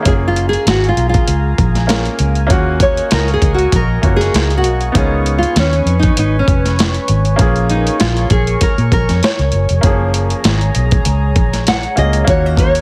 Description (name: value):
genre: indie pop, bedroom pop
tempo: 98 BPM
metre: 4/4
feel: swing 55% on 16ths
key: F# major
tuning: A4 = 439 Hz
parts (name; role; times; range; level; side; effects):
- bright upright piano; accompaniment; 0.0-12.8 s; E#3 to A#4; -24 LUFS; equal; none
- nylon-string guitar; accompaniment; 0.0-12.8 s; A#3 to F#5; -20 LUFS; equal; subtle chorus, vibrato effect
- warbly tape-like pad; sustained chords; 0.0-12.8 s; G#4 to C#6; -26 LUFS; equal; chorus, built-in reverb
- vintage muted fingered electric bass; bass; 0.1-12.8 s; E#1 to A#2; -18 LUFS; equal; none
- dusty soul sampler-style drum kit; drums; 0.1-12.8 s; hi-hat, kick drum, snare drum; -18 LUFS; equal; overdrive
room: light reverb, digital ambience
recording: heavily compressed radio sound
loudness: -14 LUFS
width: mono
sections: 0.1-12.8 A section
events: nylon-string guitar solo 0.1-12.8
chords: 0.1 F#maj9; 2.5 D#m7; 4.9 C#7; 7.4 A#m7; 9.8 F#maj9; 12.3 D#m7